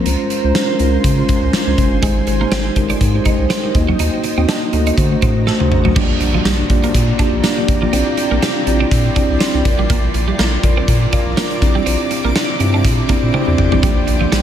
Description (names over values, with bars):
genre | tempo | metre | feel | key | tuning
1980s-style pop | 122 BPM | 4/4 | swing 55% on 16ths | unclear | A4 = 440 Hz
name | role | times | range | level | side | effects
mellow tine electric piano | accompaniment | 0.0-14.4 s | Ab3 to F5 | -18 LUFS | equal | medium stereo tremolo
shimmering ambient pad | sustained chords | 0.0-14.4 s | Db4 to D6 | -24 LUFS | right 1 dB | chorus, built-in reverb
round analog bass | bass | 0.1-14.4 s | Gb1 to D3 | -18 LUFS | equal | none
big rock drum kit | drums | 0.1-14.4 s | crash cymbal, hi-hat, kick drum, snare drum, tambourine, toms | -17 LUFS | equal | gated reverb
twelve-string electric guitar | riff | 2.0-14.4 s | F3 to Eb4 | -24 LUFS | right 8 dB | analog chorus, digital delay
crunchy overdriven guitar | accompaniment | 6.0-14.4 s | G2 to C4 | -26 LUFS | equal | wide subtle chorus
room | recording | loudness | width
light reverb, small room ambience | none | -13 LUFS | side -10 dB against mid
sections
0.0-6.0 A section; 6.0-14.4 B section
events
drum fill 5.5-6.0, 13.3-13.8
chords
0.1 Dbmaj7; 2.0 Abmaj7; 3.7 Ebm; 5.0 D7; 6.0 Gm7/Bb; 7.9 Cadd9/Bb; 9.7 Bb; 11.6 Cadd9/Bb; 13.8 Gm7/Bb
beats
| 0.06 0.55 1.04 1.53 | 2.03 2.52 3.01 3.50 | 3.99 4.49 4.98 5.47 | 5.96 6.45 6.95 7.44 | 7.93 8.42 8.91 9.40 | 9.90 10.39 10.88 11.37 | 11.86 12.36 12.85 13.34 | 13.83 14.32